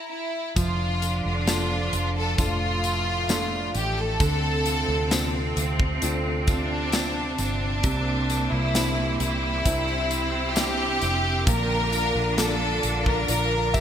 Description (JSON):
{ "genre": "pop ballad", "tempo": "66 BPM", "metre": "4/4", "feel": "straight", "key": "F major", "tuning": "A4 = 439 Hz", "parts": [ { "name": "clear studio violin section", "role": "melody", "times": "0.0-13.8 s", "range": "D4 to Bb5", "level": "-26 LUFS", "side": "left 1 dB", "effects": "none" }, { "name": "clear symphonic cello section", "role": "second line", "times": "0.6-13.8 s", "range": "A2 to D4", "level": "-32 LUFS", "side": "right 2 dB", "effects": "digital delay" }, { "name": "clear grand piano", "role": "accompaniment", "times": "0.6-13.8 s", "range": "C3 to E5", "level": "-33 LUFS", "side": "left 2 dB", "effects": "none" }, { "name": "picked steel-string acoustic guitar", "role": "arpeggios", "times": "0.6-13.8 s", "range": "Bb2 to C5", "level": "-34 LUFS", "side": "right 5 dB", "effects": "wide subtle chorus, digital delay" }, { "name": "vintage muted fingered electric bass", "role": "bass", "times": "0.6-13.8 s", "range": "F1 to D2", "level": "-28 LUFS", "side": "equal", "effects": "none" }, { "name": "modern studio drum kit", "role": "drums", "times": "0.6-13.8 s", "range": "hi-hat, kick drum, snare drum", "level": "-27 LUFS", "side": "equal", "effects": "gated reverb" }, { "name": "tambourine", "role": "percussion", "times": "0.6-13.8 s", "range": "none", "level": "-37 LUFS", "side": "left 4 dB", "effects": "none" }, { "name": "tonewheel organ", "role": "sustained chords", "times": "7.8-13.8 s", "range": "Bb3 to E6", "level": "-34 LUFS", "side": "right 1 dB", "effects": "chorus vibrato, fast rotary speaker" } ], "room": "moderate lush hall reverb, RT60 2.5 s", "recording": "bright 1980s-style digital production", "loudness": "-22 LUFS", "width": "side -9 dB against mid", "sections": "0.6-13.8 A section", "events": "stop 0.0-0.6", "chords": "0.0 N.C.; 0.6 F6; 4.2 Dm7; 7.8 Cadd9; 11.5 Bbmaj7", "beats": "| 0.56 1.47 2.38 3.29 | 4.20 5.11 6.02 6.93 | 7.84 8.75 9.66 10.56 | 11.47 12.38 13.29" }